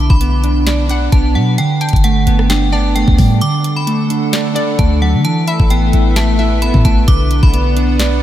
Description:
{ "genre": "hip hop, trap", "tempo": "131 BPM", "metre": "4/4", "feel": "half-time", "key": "D major", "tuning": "A4 = 440 Hz", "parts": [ { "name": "metallic FM bell", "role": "melody", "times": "0.0-8.2 s", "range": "F#5 to D6", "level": "-21 LUFS", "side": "left 1 dB", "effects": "chorus, ping-pong delay" }, { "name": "mellow electric guitar", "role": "accompaniment", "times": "0.0-8.2 s", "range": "D3 to E5", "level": "-16 LUFS", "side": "right 3 dB", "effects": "analog chorus" }, { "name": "clean 808-style bass", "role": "bass", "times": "0.0-8.2 s", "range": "G1 to D3", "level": "-13 LUFS", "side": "equal", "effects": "none" }, { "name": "trap drum kit", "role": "drums", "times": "0.1-8.1 s", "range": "handclaps, hi-hat, kick drum, rim click, snare drum", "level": "-15 LUFS", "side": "equal", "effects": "none" }, { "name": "hollow square pluck", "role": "second line", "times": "0.9-7.0 s", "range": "D5 to G5", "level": "-28 LUFS", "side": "left 4 dB", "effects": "chorus, ping-pong delay" }, { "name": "hollow soft pad", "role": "sustained chords", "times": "3.7-8.2 s", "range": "D3 to F#5", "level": "-21 LUFS", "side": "left 3 dB", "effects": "chorus" } ], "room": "light reverb", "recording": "none", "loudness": "-11 LUFS", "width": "side -12 dB against mid", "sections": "0.0-8.2 A section", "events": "break 3.4-3.9", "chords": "0.0 Bm; 1.6 Gadd9; 3.4 D; 5.2 Asus2; 7.1 Bm" }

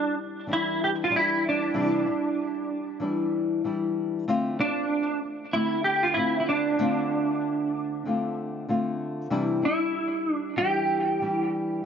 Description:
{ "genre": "indie pop", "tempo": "95 BPM", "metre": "4/4", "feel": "swing 60% on 16ths", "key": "C major", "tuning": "A4 = 440 Hz", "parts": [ { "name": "clean electric guitar", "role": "melody", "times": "0.0-11.5 s", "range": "D4 to G4", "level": "-25 LUFS", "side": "right 2 dB", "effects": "ensemble chorus, tape echo" }, { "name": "flamenco guitar", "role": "accompaniment", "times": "0.0-11.9 s", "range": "C3 to F4", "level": "-28 LUFS", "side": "left 2 dB", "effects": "wide subtle chorus, warbly pitch drift" } ], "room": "moderate plate reverb, RT60 3.0 s", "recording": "nothing above 7.5 kHz", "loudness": "-24 LUFS", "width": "side -7 dB against mid", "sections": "0.0-11.9 A section", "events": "none", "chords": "0.0 Cadd9 (rootless); 4.3 Dm7; 9.3 Cadd9" }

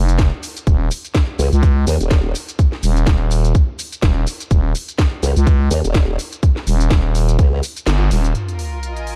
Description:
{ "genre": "bass house", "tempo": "125 BPM", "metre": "4/4", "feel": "swing 57% on 16ths", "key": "F minor", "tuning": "A4 = 440 Hz", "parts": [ { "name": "growling FM bass", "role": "bass", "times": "0.0-8.3 s", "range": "Eb1 to Db2", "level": "-18 LUFS", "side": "equal", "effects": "overdrive, sidechain pumping" }, { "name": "garage drum kit", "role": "drums", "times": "0.1-9.2 s", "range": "hi-hat, shaker, snare drum", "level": "-28 LUFS", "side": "equal", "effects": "none" }, { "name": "electronic kick drum", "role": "drums", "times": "0.2-7.5 s", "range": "none", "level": "-17 LUFS", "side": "equal", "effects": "none" }, { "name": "formant-sweep wobble bass", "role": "bass", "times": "1.4-2.3, 5.2-7.6 s", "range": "Eb1 to Eb2", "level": "-20 LUFS", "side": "equal", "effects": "chorus, sidechain pumping" }, { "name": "sub drop", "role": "sound effects", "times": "8.3-9.2 s", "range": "none", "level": "-26 LUFS", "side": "equal", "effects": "none" }, { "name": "rich studio string section", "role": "texture", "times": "8.3-9.2 s", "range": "F4 to Ab5", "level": "-32 LUFS", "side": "equal", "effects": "sidechain pumping" } ], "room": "little or no reverb", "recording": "dark, warm production", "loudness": "-17 LUFS", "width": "mono", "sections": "0.0-8.3 A section", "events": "drop 0.0-8.3; kick drops out 7.9-8.3; band accent 7.9; impact 8.3-9.2", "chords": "0.0 N.C.; 8.3 Fm7" }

